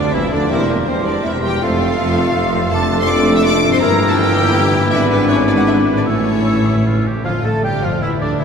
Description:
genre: classical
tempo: 151-167 BPM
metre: 3/4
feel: rubato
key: D minor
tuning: A4 = 440 Hz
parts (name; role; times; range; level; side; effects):
- rich symphonic violin section; melody; 0.0-8.4 s; D4 to E6; -22 LUFS; left 2 dB; none
- bright oboe; second line; 0.0-8.4 s; E4 to A5; -26 LUFS; right 2 dB; none
- bright symphonic violin section; second line; 0.0-8.4 s; Bb3 to E5; -25 LUFS; left 3 dB; none
- clear clarinet; second line; 0.0-8.4 s; D4 to A4; -27 LUFS; left 2 dB; none
- mellow concert flute; second line; 0.0-8.4 s; D5 to E6; -26 LUFS; equal; none
- clear symphonic viola section; accompaniment; 0.0-8.4 s; A3 to A4; -24 LUFS; right 1 dB; none
- warm bassoon; accompaniment; 0.0-8.4 s; D3 to A3; -23 LUFS; right 2 dB; none
- mellow French horn section; sustained chords; 0.0-8.4 s; D3 to E4; -22 LUFS; left 3 dB; none
- concert harp; arpeggios; 0.0-8.4 s; E2 to F5; -26 LUFS; left 4 dB; none
- dark tuba; bass; 0.0-7.0 s; E1 to D2; -21 LUFS; right 1 dB; none
- rich studio cello section; bass; 0.0-8.4 s; D2 to A2; -23 LUFS; right 2 dB; none
- rich symphonic double bass section; bass; 0.0-8.4 s; E1 to D2; -24 LUFS; right 2 dB; none
- timpani; percussion; 6.1-7.2 s; A2; -23 LUFS; left 1 dB; none
room: wet cathedral reverb, RT60 4.0 s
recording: recorded in a church or concert hall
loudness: -13 LUFS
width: side -6 dB against mid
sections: 0.0-7.2 A section; 7.2-8.4 B section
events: timpani fill 6.1-7.2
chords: 0.0 G7; 0.5 C7/E; 1.6 F; 2.7 Dm/F; 3.8 Edim/G; 4.9 E7/G#; 6.1 A; 7.2 Dm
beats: 0.13 | 0.51 0.88 1.25 | 1.62 1.99 2.36 | 2.72 3.08 3.45 | 3.81 4.18 4.55 | 4.92 5.29 5.67 | 6.07 6.46 6.85 | 7.25 7.64 8.02 | 8.39

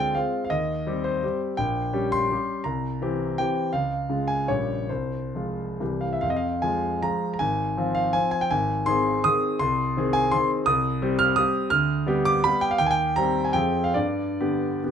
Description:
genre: classical, romantic triple-time dance for piano with dotted rhythms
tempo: 126-181 BPM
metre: 3/4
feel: rubato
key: F minor, C minor from 10.7 s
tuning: A4 = 440 Hz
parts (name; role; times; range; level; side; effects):
- warm concert grand piano; solo; 0.0-14.9 s; Ab1 to F6; -22 LUFS; equal; none
room: light reverb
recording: minimal, uncompressed stereo recording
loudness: -22 LUFS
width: side -8 dB against mid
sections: 0.0-6.2 A section; 6.2-14.9 B section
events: none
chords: 0.0 Dm7b5; 0.5 Cm/Eb; 1.6 Gdim/Bb; 2.6 C7; 3.7 Db; 4.5 Gdim/Bb; 4.9 Fm/C; 5.8 C; 6.2 Fm; 7.4 Fm/Ab; 8.5 Ab; 9.6 Ab/C; 10.7 Cm; 11.7 G7/D; 12.8 Cm/Eb; 13.5 Fm; 13.9 G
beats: 0.16 | 0.51 0.87 1.23 | 1.57 1.94 2.31 | 2.65 3.01 3.38 | 3.72 4.09 4.48 | 4.89 5.34 5.80 | 6.24 6.63 7.02 | 7.39 7.77 8.14 | 8.51 8.87 9.25 | 9.61 9.97 10.33 | 10.67 11.02 11.37 | 11.71 12.07 12.45 | 12.79 13.15 13.53 | 13.95 14.40 14.83

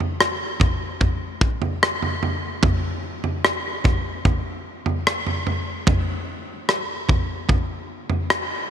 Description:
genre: pop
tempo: 74 BPM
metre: 4/4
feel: straight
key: none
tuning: none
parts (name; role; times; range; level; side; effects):
- modern studio drum kit; drums; 0.0-8.5 s; kick drum, rim click, toms; -20 LUFS; equal; none
room: moderate huge ambient reverb, RT60 4.0 s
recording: none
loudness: -20 LUFS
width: side -9 dB against mid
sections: 0.0-8.7 A section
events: none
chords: none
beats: 0.20 1.01 1.83 | 2.64 3.45 4.26 5.07 | 5.88 6.69 7.50 8.31

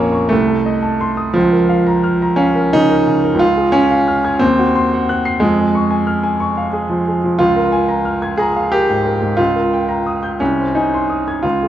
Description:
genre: classical, romantic character piece for solo piano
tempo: 59 BPM (dotted quarters)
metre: 6/8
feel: rubato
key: Ab major from 7.4 s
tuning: A4 = 440 Hz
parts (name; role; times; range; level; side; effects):
- clear baby grand piano; solo; 0.0-11.7 s; Bb1 to C7; -13 LUFS; right 1 dB; none
room: moderate recital hall reverb, RT60 1.5 s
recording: dark, warm production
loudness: -13 LUFS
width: side -11 dB against mid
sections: 0.0-11.7 A section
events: none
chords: 0.3 Adim/C; 1.4 Bbm/Db; 3.4 Db; 4.4 Cdim/Eb; 5.4 Db/F; 7.4 Bbm7/Db; 9.4 Eb7/Db; 10.4 Ab/C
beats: 0.30 | 1.35 2.38 | 3.41 4.42 | 5.41 6.41 | 7.40 8.39 | 9.38 10.40 | 11.44

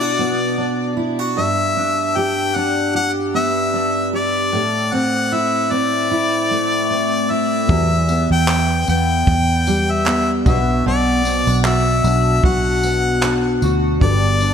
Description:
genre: acoustic pop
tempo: 76 BPM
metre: 4/4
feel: swing 55% on 16ths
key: unclear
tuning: A4 = 440 Hz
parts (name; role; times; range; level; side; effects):
- clear harmonica; melody; 0.0-14.5 s; D5 to G5; -19 LUFS; left 3 dB; digital delay
- fingerpicked steel-string acoustic guitar; accompaniment; 0.0-14.5 s; E2 to G4; -19 LUFS; equal; double-tracked left and right
- dark upright piano; accompaniment; 7.7-14.5 s; F#3 to B4; -30 LUFS; left 6 dB; lush chorus
- vintage muted fingered electric bass; bass; 7.7-14.5 s; G1 to E2; -19 LUFS; right 1 dB; none
- compact cocktail drum kit; drums; 7.7-14.5 s; handclaps, kick drum, tambourine; -21 LUFS; right 1 dB; gated reverb
- group handclap; percussion; 8.5-13.4 s; none; -31 LUFS; right 10 dB; none
room: moderate lush hall reverb, RT60 2.4 s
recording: bright 1980s-style digital production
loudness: -15 LUFS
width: side -8 dB against mid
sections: 0.0-14.5 A section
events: none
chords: 0.0 Bm; 1.4 G; 4.5 Am; 7.7 Emadd9; 10.5 Bm; 14.0 G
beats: 0.58 | 1.37 2.16 2.95 3.74 | 4.53 5.32 6.11 6.90 | 7.69 8.48 9.27 10.06 | 10.86 11.64 12.43 13.22 | 14.01

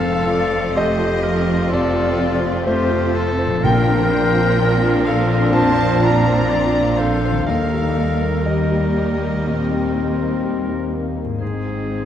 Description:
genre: cinematic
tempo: 62 BPM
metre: 4/4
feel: rubato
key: Bb major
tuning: A4 = 440 Hz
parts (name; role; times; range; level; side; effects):
- warm symphonic violin section; melody; 0.0-10.4 s; C5 to Bb5; -29 LUFS; left 4 dB; none
- clear oboe; second line; 0.0-12.1 s; G4 to D5; -28 LUFS; right 2 dB; none
- hollow concert flute; second line; 0.0-10.4 s; F4 to D5; -24 LUFS; equal; none
- rich symphonic violin section; second line; 0.0-12.1 s; C4 to F4; -29 LUFS; left 1 dB; none
- warm concert grand piano; accompaniment; 0.0-12.1 s; Bb1 to Bb5; -22 LUFS; left 2 dB; none
- warm symphonic viola section; accompaniment; 0.0-12.1 s; F3 to C4; -27 LUFS; right 2 dB; none
- mellow French horn section; sustained chords; 0.0-12.1 s; F3 to Eb4; -25 LUFS; left 3 dB; none
- concert harp; arpeggios; 0.0-12.1 s; F2 to C5; -27 LUFS; left 6 dB; none
- rich symphonic cello section; bass; 0.0-12.1 s; Eb2 to Bb2; -26 LUFS; right 2 dB; none
- rich symphonic double bass section; bass; 0.0-12.1 s; F1 to Eb2; -25 LUFS; right 4 dB; none
- timpani; percussion; 0.0-5.0 s; F2 to Bb2; -27 LUFS; right 1 dB; none
room: wet concert hall reverb, RT60 2.2 s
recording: dark, warm production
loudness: -16 LUFS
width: side -10 dB against mid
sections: 0.0-12.1 A section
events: none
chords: 0.0 F; 3.6 Bbadd9; 7.5 Eb; 11.4 Ab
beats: 0.75 1.70 2.65 | 3.62 4.58 5.53 6.49 | 7.47 8.46 9.45 10.43 | 11.41

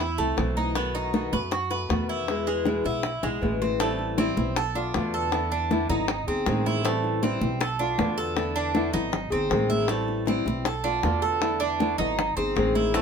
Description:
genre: latin, Cuban son and guajira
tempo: 158 BPM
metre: 4/4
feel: straight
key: A minor from 3.8 s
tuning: A4 = 440 Hz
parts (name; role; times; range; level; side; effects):
- flamenco guitar; accompaniment; 0.0-13.0 s; B2 to G#4; -28 LUFS; left 4 dB; none
- Cuban tres; arpeggios; 0.0-13.0 s; G#3 to B4; -28 LUFS; right 5 dB; none
- upright bass; bass; 0.0-13.0 s; G1 to F#2; -31 LUFS; right 1 dB; none
- bongos; percussion; 0.0-13.0 s; none; -31 LUFS; left 5 dB; none
- congas; percussion; 0.0-13.0 s; none; -31 LUFS; right 1 dB; none
room: light reverb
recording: minimal, uncompressed stereo recording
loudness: -23 LUFS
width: side -6 dB against mid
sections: 0.0-3.8 A section; 3.8-13.0 B section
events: drum fill 3.2-3.8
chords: 0.0 Am; 0.8 B7; 2.3 E; 3.8 Am9; 4.6 Bm7b5; 5.3 E7sus4; 6.1 G#; 6.9 Am9; 7.6 Bm7b5; 8.4 E7sus4; 9.1 G#; 9.9 Am9; 10.7 Bm7b5; 11.4 E7sus4; 12.2 G#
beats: 0.00 0.38 | 0.76 1.14 1.52 1.91 | 2.29 2.67 3.05 3.43 | 3.81 4.19 4.57 4.95 | 5.33 5.71 6.09 6.47 | 6.85 7.23 7.61 7.99 | 8.38 8.76 9.14 9.52 | 9.90 10.28 10.66 11.04 | 11.42 11.80 12.18 12.56 | 12.95

